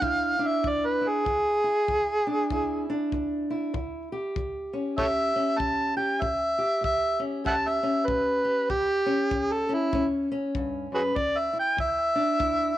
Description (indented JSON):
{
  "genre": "acoustic country blues, solo or duo",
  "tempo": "97 BPM",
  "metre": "4/4",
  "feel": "swing 60% on 8ths",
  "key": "unclear",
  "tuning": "A4 = 441 Hz",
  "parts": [
    { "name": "overdriven harmonica", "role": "melody", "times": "0.0-12.8 s", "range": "E4 to A5", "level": "-24 LUFS", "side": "right 1 dB", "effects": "none" },
    { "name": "fingerpicked steel-string acoustic guitar", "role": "accompaniment", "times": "0.0-12.8 s", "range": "E2 to G4", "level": "-30 LUFS", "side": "equal", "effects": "none" },
    { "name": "kick drum", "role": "drums", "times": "0.0-12.6 s", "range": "none", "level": "-36 LUFS", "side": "left 2 dB", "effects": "none" }
  ],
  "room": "light reverb, small room ambience",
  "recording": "1960s-style stereo",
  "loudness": "-24 LUFS",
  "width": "side -13 dB against mid",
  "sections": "0.0-12.8 A section",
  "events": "harmonica solo 0.0-12.8",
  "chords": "0.0 E7; 3.7 A7; 11.2 E7(no3)"
}